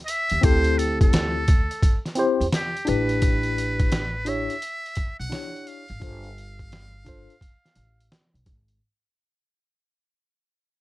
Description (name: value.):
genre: hip hop, jazz-hop.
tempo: 86 BPM.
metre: 4/4.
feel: swing 65% on 16ths.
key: unclear.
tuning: A4 = 441 Hz.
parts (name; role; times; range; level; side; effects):
trumpet with metal mute; melody; 0.1-8.1 s; G4 to F#5; -28 LUFS; equal; none.
trip hop sampler-style drum kit; drums; 0.1-8.8 s; hi-hat, kick drum, snare drum; -22 LUFS; equal; none.
upright bass; bass; 0.3-8.8 s; G1 to E2; -28 LUFS; equal; none.
tine electric piano; accompaniment; 0.4-7.3 s; C4 to C#5; -25 LUFS; left 3 dB; medium stereo tremolo.
room: little or no reverb.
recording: dark, warm production.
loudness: -20 LUFS.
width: side -17 dB against mid.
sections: 0.0-8.8 A section.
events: fade-out 0.0-8.8.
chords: 0.4 D9sus4; 2.9 A9sus4; 6.0 G9sus4.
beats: | 0.43 1.13 1.83 2.53 | 3.23 3.92 4.62 5.32 | 6.02 6.71 7.41 8.11.